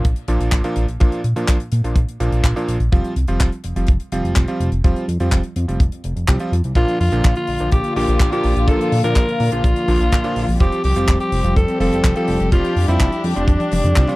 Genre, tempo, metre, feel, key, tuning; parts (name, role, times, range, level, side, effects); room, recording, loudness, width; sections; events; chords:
italo disco; 125 BPM; 4/4; straight; A4 = 440 Hz
clear electric grand piano; stabs; 0.0-14.2 s; Bb2 to G4; -24 LUFS; right 1 dB
chorused synth bass; bass; 0.0-14.1 s; F1 to Bb2; -19 LUFS; equal
kick drum; drums; 0.0-14.1 s; -16 LUFS; equal
tight funk drum kit; drums; 0.0-14.2 s; handclaps, hi-hat, toms; -27 LUFS; left 1 dB
raspy alto saxophone; melody; 6.8-14.2 s; D4 to Bb4; -21 LUFS; equal
dark studio string section; sustained chords; 6.8-14.2 s; D3 to G4; -23 LUFS; left 2 dB
little or no reverb; dry, close 1970s-style studio recording; -15 LUFS; side -20 dB against mid
0.0-14.2 A section
drum fill 13.5-14.2
0.0 Bb; 2.9 Fsus2; 6.8 Bb; 10.6 Fsus2